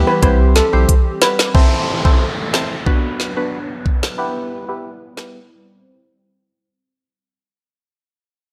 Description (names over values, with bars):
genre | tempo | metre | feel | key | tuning
dancehall | 91 BPM | 4/4 | straight | unclear | A4 = 440 Hz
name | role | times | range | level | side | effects
percussive organ stab | accompaniment | 0.0-5.4 s | B3 to C5 | -24 LUFS | equal | chorus, phaser, low-pass filter
hollow soft pad | sustained chords | 0.0-6.8 s | E3 to C5 | -30 LUFS | equal | ensemble chorus, low-pass filter
saturated sub bass | bass | 0.0-0.8 s | B1 to C2 | -16 LUFS | equal | none
steel pan | melody | 0.1-1.3 s | A4 to B4 | -20 LUFS | equal | delay
island pop drum kit | drums | 0.2-5.3 s | hi-hat, kick drum, rim click, snare drum | -17 LUFS | equal | none
downlifter | sound effects | 1.5-6.8 s | none | -28 LUFS | equal | none
room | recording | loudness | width
light reverb, digital ambience | none | -16 LUFS | mono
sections
0.0-1.5 A section; 1.5-6.8 B section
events
drum fill 0.9-1.5; fade-out 1.5-6.8; filter sweep 1.5-6.8; break 5.5-6.8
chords
0.2 C; 1.5 Am; 2.9 Bm; 4.2 Em; 5.5 C